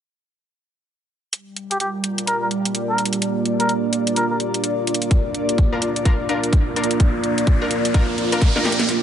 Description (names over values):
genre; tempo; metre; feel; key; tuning
bass house; 127 BPM; 4/4; swing 61% on 16ths; G minor; A4 = 440 Hz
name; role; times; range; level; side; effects
deep dark ambient pad; sustained chords; 2.5-9.0 s; Bb3 to D5; -24 LUFS; right 2 dB; chorus, built-in reverb, sidechain pumping
garage drum kit; drums; 1.3-9.0 s; hi-hat, shaker, snare drum; -24 LUFS; equal; none
airy breathy pad; texture; 1.3-9.0 s; G3 to D5; -25 LUFS; equal; chorus, phaser, sidechain pumping
trumpet with cup mute; melody; 1.7-4.4 s; G4 to Bb4; -24 LUFS; left 1 dB; tape echo
electronic kick drum; drums; 5.1-8.5 s; none; -18 LUFS; equal; none
riser; sound effects; 6.6-9.0 s; none; -28 LUFS; right 1 dB; none
orchestra-hit-like synth stab; stabs; 5.7-9.0 s; D4 to Bb4; -25 LUFS; left 3 dB; built-in reverb, sidechain pumping, tape echo
room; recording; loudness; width
light reverb, digital ambience; nothing above 11.0 kHz; -18 LUFS; side -9 dB against mid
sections
1.3-8.9 A section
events
riser 6.6-8.9; drum fill 8.4-8.9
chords
1.3 Gm; 5.1 Bb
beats
| 1.33 1.80 2.27 2.75 | 3.22 3.69 4.16 4.64 | 5.11 5.58 6.05 6.53 | 7.00 7.47 7.94 8.42 | 8.89